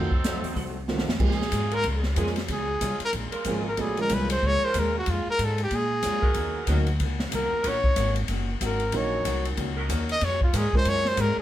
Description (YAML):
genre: jazz, big band swing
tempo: 186 BPM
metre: 4/4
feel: swing 61% on 8ths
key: Bb minor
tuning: A4 = 440 Hz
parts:
  - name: clear saxophone section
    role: melody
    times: 0.0-0.8 s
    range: C4 to A4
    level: -33 LUFS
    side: right 1 dB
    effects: none
  - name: picked steel-string acoustic guitar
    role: accompaniment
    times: 0.0-11.4 s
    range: Bb2 to Gb4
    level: -36 LUFS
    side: left 4 dB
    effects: none
  - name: warm grand piano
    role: accompaniment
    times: 0.0-4.7, 6.7-6.9, 8.9-11.2 s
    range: Eb3 to Bb4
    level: -30 LUFS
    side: right 3 dB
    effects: none
  - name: upright bass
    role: bass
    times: 0.0-11.4 s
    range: Gb1 to Bb2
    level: -28 LUFS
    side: equal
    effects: none
  - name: swinging big-band drum kit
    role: drums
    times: 0.1-11.3 s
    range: crash cymbal, hi-hat, kick drum, ride cymbal, snare drum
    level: -29 LUFS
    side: equal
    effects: none
  - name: bright trumpet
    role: melody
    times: 1.2-11.4 s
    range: F4 to Eb5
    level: -26 LUFS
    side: equal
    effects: none
  - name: bright saxophone section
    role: sustained chords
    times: 1.7-10.7 s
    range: Gb3 to Bb4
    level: -34 LUFS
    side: right 2 dB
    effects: none
room: moderate studio reverb, RT60 0.6 s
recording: band playing live in one room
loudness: -23 LUFS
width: side -12 dB against mid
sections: 0.0-1.2 A section; 1.2-11.4 B section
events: drum fill 0.9-1.2; trumpet solo 1.2-11.4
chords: 0.0 F7b9; 1.2 Bbm7; 6.4 Ebm7; 10.2 Bbm7